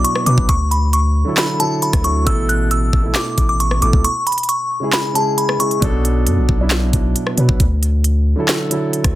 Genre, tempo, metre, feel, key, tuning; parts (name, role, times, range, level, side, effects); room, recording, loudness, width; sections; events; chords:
hip hop, trap; 135 BPM; 4/4; half-time; A4 = 438 Hz
delicate synth tine bell; melody; 0.0-5.8 s; A5 to F#6; -19 LUFS; left 1 dB; chorus
dark baby grand piano; accompaniment; 0.0-9.2 s; B2 to B4; -21 LUFS; right 1 dB
long sustained 808-style bass; bass; 0.0-9.2 s; A1 to B2; -16 LUFS; equal
trap drum kit; drums; 0.0-9.1 s; handclaps, hi-hat, kick drum, rim click, snare drum; -18 LUFS; equal; soft clipping on snare
digital ambience; dense, heavily limited modern master; -14 LUFS; side -15 dB against mid
0.0-9.2 A section
kick muted 4.0-5.8
0.5 Dadd9; 2.3 Asus2; 4.0 C#m; 5.8 Bm7; 7.6 Dadd9